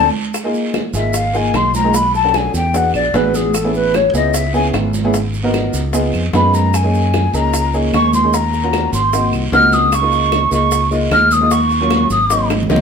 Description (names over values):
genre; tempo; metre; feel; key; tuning
Afro-Cuban jazz; 150 BPM; 4/4; straight; unclear; A4 = 440 Hz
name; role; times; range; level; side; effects
breathy mellow jazz flute; melody; 0.0-12.5 s; G#4 to F6; -15 LUFS; left 1 dB; none
warm upright piano; accompaniment; 0.0-12.8 s; Gb3 to Bb4; -20 LUFS; equal; none
modern bright fingered electric bass; bass; 0.0-12.8 s; Ab1 to Gb2; -18 LUFS; equal; none
bongos; percussion; 0.3-12.8 s; none; -25 LUFS; left 3 dB; none
claves; percussion; 0.3-12.7 s; none; -30 LUFS; right 6 dB; none
congas; percussion; 0.3-12.8 s; none; -24 LUFS; right 2 dB; none
guiro; percussion; 0.3-12.8 s; none; -32 LUFS; right 4 dB; none
maracas; percussion; 0.3-12.8 s; none; -28 LUFS; right 4 dB; none
room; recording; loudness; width
moderate studio reverb, RT60 0.7 s; band playing live in one room; -13 LUFS; side -6 dB against mid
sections
0.3-12.8 A section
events
drum fill 0.0-0.3, 12.5-12.8; band accent 0.0-0.3; flute solo 0.3-12.8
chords
0.3 Abm69; 1.9 Cbm7; 2.7 E7; 3.5 Amaj9; 5.1 Abm7; 5.9 Db7; 6.7 Gb6; 8.3 Ebm7; 9.1 Ab7; 9.9 Db69; 11.5 Ebm7; 12.3 Ab9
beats
| 0.34 0.74 1.14 1.54 | 1.94 2.34 2.74 3.14 | 3.54 3.94 4.34 4.74 | 5.14 5.54 5.94 6.34 | 6.74 7.14 7.54 7.93 | 8.33 8.73 9.13 9.53 | 9.92 10.32 10.72 11.12 | 11.51 11.91 12.31 12.70